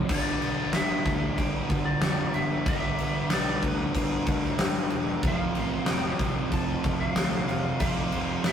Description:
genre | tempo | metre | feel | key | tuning
hard rock | 94 BPM | 4/4 | straight | G mixolydian | A4 = 440 Hz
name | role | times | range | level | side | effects
overdriven electric guitar | riff | 0.0-8.5 s | F2 to G3 | -32 LUFS | left 4 dB | none
sludgy distorted guitar | riff | 0.0-8.5 s | F2 to G3 | -32 LUFS | right 5 dB | overdrive
lightly driven lead guitar | melody | 0.1-8.5 s | B4 to A5 | -34 LUFS | left 1 dB | none
fuzz picked electric bass | bass | 0.1-8.5 s | E1 to F2 | -34 LUFS | left 1 dB | overdrive
huge arena drum kit | drums | 0.1-8.5 s | crash cymbal, kick drum, snare drum | -28 LUFS | equal | none
room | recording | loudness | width
light reverb | rough rehearsal-room recording | -24 LUFS | side -8 dB against mid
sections
0.1-8.5 A section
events
none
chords
0.1 G; 5.2 F5

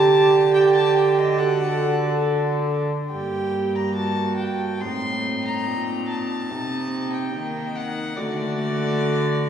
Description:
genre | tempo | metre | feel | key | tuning
classical, renaissance-style consort dance | 71 BPM | 4/4 | straight | G harmonic minor from 3.1 s | A4 = 440 Hz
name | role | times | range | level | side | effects
rich violin | melody | 0.0-9.5 s | D5 to C6 | -28 LUFS | left 3 dB | none
warm viola | second line | 0.0-9.5 s | Eb4 to A4 | -26 LUFS | right 3 dB | none
warm trombone | accompaniment | 0.0-9.5 s | A3 to G4 | -23 LUFS | right 3 dB | none
rich cello | bass | 0.0-9.5 s | G2 to Eb3 | -26 LUFS | equal | none
room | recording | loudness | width
wet concert hall reverb, RT60 2.5 s | recorded in a church or concert hall, small room ambience | -20 LUFS | side -8 dB against mid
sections
0.0-3.1 A section; 3.1-9.5 B section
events
none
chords
0.0 Dsus4; 1.4 D; 3.1 Gm; 4.8 Adim; 6.5 Cm; 8.2 D

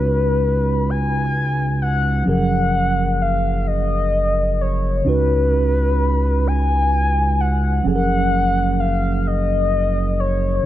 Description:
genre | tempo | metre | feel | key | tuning
R&B | 43 BPM (dotted quarters) | 6/8 | straight | F# major | A4 = 435 Hz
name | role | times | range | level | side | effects
mellow horn-like synth lead | melody | 0.0-10.7 s | B4 to G#5 | -21 LUFS | left 3 dB | chorus, analog delay
mellow tine electric piano | accompaniment | 0.0-10.7 s | C#3 to B4 | -23 LUFS | right 3 dB | slow stereo tremolo, analog delay
smooth synth bass | bass | 0.0-10.6 s | F#1 to C#2 | -20 LUFS | equal | none
room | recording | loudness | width
light reverb | echo-heavy mix | -16 LUFS | side -13 dB against mid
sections
0.0-10.7 A section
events
none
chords
0.0 C#9sus4; 2.3 F#maj9; 5.1 C#9sus4; 7.8 F#maj9

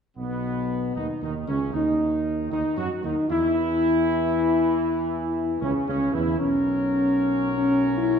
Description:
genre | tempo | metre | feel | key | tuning
classical, ceremonial fanfare | 77 BPM | 4/4 | straight | B major | A4 = 439 Hz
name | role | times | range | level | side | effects
mellow trumpet section | melody | 0.2-8.2 s | B3 to C#5 | -30 LUFS | right 2 dB | none
dark French horn section | sustained chords | 0.2-8.2 s | B3 to F#4 | -23 LUFS | left 2 dB | none
warm trombone section | sustained chords | 0.2-8.2 s | B2 to C#4 | -32 LUFS | right 3 dB | none
mellow tuba | bass | 0.2-8.2 s | B1 to F#2 | -30 LUFS | right 4 dB | none
room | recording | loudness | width
wet recital hall reverb, RT60 1.4 s | minimal, uncompressed stereo recording | -21 LUFS | side -7 dB against mid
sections
0.2-8.2 A section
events
none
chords
0.2 B; 3.3 C#m; 6.4 F#/B

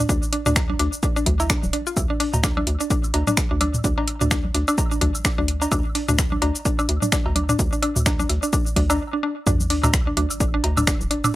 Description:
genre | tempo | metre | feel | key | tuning
minimal techno | 128 BPM | 4/4 | swing 58% on 16ths | unclear | A4 = 440 Hz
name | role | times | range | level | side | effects
mallet-like synth pluck | riff | 0.0-11.3 s | D4 to F4 | -24 LUFS | equal | chorus, sidechain pumping, tape echo
hollow knocking FM bass | bass | 0.0-11.1 s | D1 to D2 | -24 LUFS | equal | sidechain pumping
dusty soul sampler-style drum kit | drums | 0.1-11.2 s | hi-hat, snare drum | -36 LUFS | right 1 dB | none
electronic kick drum | drums | 0.1-11.0 s | none | -23 LUFS | equal | none
house drum kit | drums | 0.1-11.3 s | finger snaps, hi-hat, shaker | -24 LUFS | left 1 dB | none
electronic toms, cowbell, congas and woodblock | percussion | 0.5-11.3 s | none | -27 LUFS | equal | analog delay
sub drop | sound effects | 9.5-11.3 s | none | -29 LUFS | equal | none
room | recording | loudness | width
little or no reverb | dry, gritty hardware recording | -19 LUFS | side -16 dB against mid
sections
0.0-9.5 A section; 9.5-11.4 B section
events
break 9.0-9.5; drop 9.5-11.4; impact 9.5-11.3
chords
none

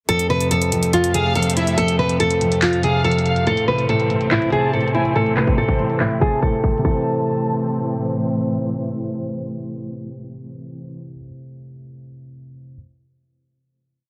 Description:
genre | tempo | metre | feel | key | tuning
hip hop, trap | 142 BPM | 4/4 | half-time | A minor | A4 = 443 Hz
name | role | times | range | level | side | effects
nylon-string guitar | melody | 0.1-8.1 s | E4 to B4 | -22 LUFS | equal | digital delay
dark concert grand piano | accompaniment | 0.1-12.7 s | F2 to C4 | -25 LUFS | equal | none
clear symphonic string section | sustained chords | 0.1-11.0 s | F2 to C4 | -28 LUFS | equal | none
trap drum kit | drums | 0.1-6.9 s | crash cymbal, handclaps, hi-hat, kick drum | -25 LUFS | equal | none
warm studio violin section | second line | 1.1-8.1 s | E5 to A5 | -31 LUFS | equal | digital delay
room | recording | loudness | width
small room reverb | dense, heavily limited modern master, low-pass filter | -19 LUFS | mono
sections
0.1-6.8 breakdown; 6.8-10.2 final chord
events
filter sweep 0.1-6.8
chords
0.1 F; 3.5 Am

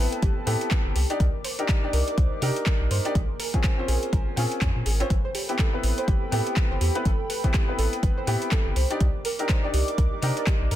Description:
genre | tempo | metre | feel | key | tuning
deep house | 123 BPM | 4/4 | swing 59% on 16ths | A minor | A4 = 441 Hz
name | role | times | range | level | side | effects
dark analog pad | sustained chords | 0.0-10.8 s | A4 to D6 | -35 LUFS | right 1 dB | chorus, sidechain pumping
soft round pluck | arpeggios | 0.0-10.8 s | G4 to F5 | -34 LUFS | right 4 dB | ensemble chorus, sidechain pumping, tape echo
felt-muted upright piano | stabs | 0.0-10.8 s | B3 to D5 | -30 LUFS | left 2 dB | sidechain pumping, tape echo
round analog bass | bass | 0.0-10.8 s | G1 to C3 | -25 LUFS | equal | sidechain pumping
deep house drum kit | drums | 0.1-10.8 s | handclaps, hi-hat | -31 LUFS | equal | overdrive
electronic kick drum | drums | 0.2-10.6 s | none | -24 LUFS | equal | overdrive
room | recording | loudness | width
digital ambience | dense, heavily limited modern master | -22 LUFS | side -12 dB against mid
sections
0.0-10.8 A section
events
none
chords
0.0 Am9; 1.0 Cm9; 3.2 Bbm9; 5.1 Am9; 8.8 Cm9

